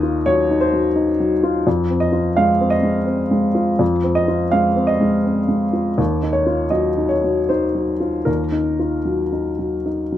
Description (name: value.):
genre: neoclassical minimalist piano.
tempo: 74-86 BPM.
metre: 3/4.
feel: rubato.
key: unclear.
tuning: A4 = 440 Hz.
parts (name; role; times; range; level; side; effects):
warm upright piano; solo; 0.0-10.2 s; Eb2 to F5; -16 LUFS; left 1 dB; none.
room: moderate small room reverb, RT60 0.6 s.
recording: none.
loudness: -16 LUFS.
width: side -12 dB against mid.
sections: 0.0-10.2 A section.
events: none.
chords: 0.0 Ebmadd9; 1.7 Fm7; 6.0 Ebmadd9.